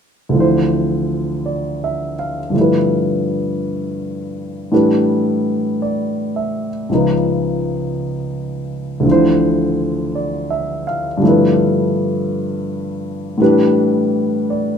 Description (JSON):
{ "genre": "jazz", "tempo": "55 BPM", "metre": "4/4", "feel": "swing 68% on 8ths", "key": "unclear", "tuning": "A4 = 436 Hz", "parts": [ { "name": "warm grand piano", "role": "accompaniment", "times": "0.3-14.8 s", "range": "Db2 to F5", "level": "-15 LUFS", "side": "equal", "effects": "none" } ], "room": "moderate studio reverb, RT60 0.8 s", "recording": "minimal, uncompressed stereo recording", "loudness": "-15 LUFS", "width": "side -7 dB against mid", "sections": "0.3-14.8 A section", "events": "none", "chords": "0.3 Dm9; 2.5 G13; 4.7 A9sus4; 6.9 Db7; 9.0 Dm9; 11.2 G13; 13.4 A9sus4" }